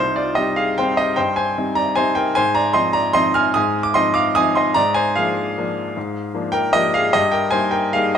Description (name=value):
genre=classical, piano waltz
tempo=151 BPM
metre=3/4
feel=uneven beats, rubato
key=unclear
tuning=A4 = 440 Hz
part: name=clear baby grand piano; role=solo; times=0.0-8.2 s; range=C2 to F6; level=-16 LUFS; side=equal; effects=none
room=light reverb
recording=close, detailed microphones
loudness=-16 LUFS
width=side -8 dB against mid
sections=0.0-8.2 A section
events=none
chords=0.0 Cm; 2.4 Fm7/Ab; 4.8 Bb7/Ab; 7.1 Eb/G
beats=0.38 0.78 | 1.18 1.57 1.98 | 2.37 2.77 3.17 | 3.57 3.96 4.37 | 4.76 5.16 5.57 | 5.96 6.34 6.75 | 7.15 7.54 7.95